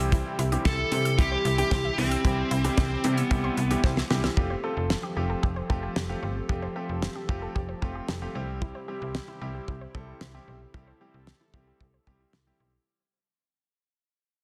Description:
synth-pop; 113 BPM; 4/4; straight; C major; A4 = 441 Hz
clear concert grand piano; accompaniment; 0.0-12.7 s; E3 to A4; -36 LUFS; equal
chorused pulse-width pad; sustained chords; 0.0-12.8 s; C3 to A4; -40 LUFS; equal
unison pluck; arpeggios; 0.0-12.7 s; E4 to E6; -41 LUFS; equal; tape echo
slap-like FM bass; bass; 0.0-12.8 s; F1 to C3; -33 LUFS; equal
damped 70s drum kit; drums; 0.1-12.5 s; hi-hat, kick drum, snare drum; -30 LUFS; equal
dark smooth lead guitar; melody; 0.7-3.8 s; C4 to A4; -32 LUFS; equal; overdrive, tape echo
moderate scoring stage reverb, RT60 2.0 s, small room ambience; dense, heavily limited modern master; -27 LUFS; mono
0.0-4.4 A section; 4.4-12.9 B section
drum fill 3.8-4.4; fade-out 4.4-12.9
0.0 C; 4.4 Fadd9; 8.4 C

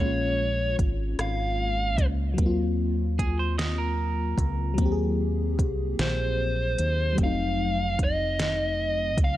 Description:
slow six-eight R&B; 50 BPM (dotted quarters); 6/8; straight; Eb dorian; A4 = 440 Hz
dark smooth lead guitar; melody; 0.0-2.1, 6.0-9.3 s; C5 to F5; -28 LUFS; equal; overdrive
FM electric piano with soft pad layer; accompaniment; 0.0-9.4 s; Gb3 to Ab4; -30 LUFS; left 2 dB; chorus, tremolo
deep dub fingered electric bass; bass; 0.0-9.4 s; F1 to Eb2; -28 LUFS; equal
smooth R&B drum kit; drums; 0.8-9.4 s; hi-hat, kick drum, rim click, snare drum; -26 LUFS; equal
clean electric guitar; second line; 3.2-4.9 s; Ab4 to Eb5; -33 LUFS; right 6 dB
light reverb, digital ambience; -23 LUFS; side -14 dB against mid
0.0-9.4 A section
0.0 Bbm7; 2.4 Ebm69; 7.2 F7b9

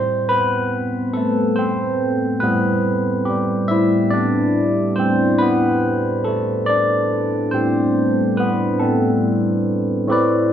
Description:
R&B; 47 BPM (dotted quarters); 6/8; straight; A minor; A4 = 440 Hz
barky tine electric piano; solo; 0.0-10.5 s; A2 to E5; -16 LUFS; equal; phaser
wet large studio reverb, RT60 1.3 s; band playing live in one room, nothing above 10.4 kHz; -16 LUFS; side -9 dB against mid
0.0-10.1 A section
tine electric piano solo 0.0-10.1
0.0 Am11

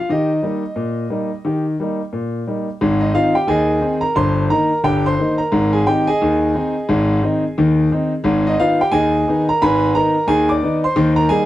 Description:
ragtime piano; 88 BPM; 2/4; swing 60% on 16ths; A4 = 440 Hz
clear concert grand piano; solo; 0.0-11.5 s; G1 to D6; -15 LUFS; equal
moderate small room reverb, RT60 0.5 s; dark, warm production; -15 LUFS; side -14 dB against mid
0.0-2.8 A section; 2.8-11.5 B section
0.1 Eb; 2.8 Ab; 4.2 Eb/G; 5.5 Ab; 8.3 Abm

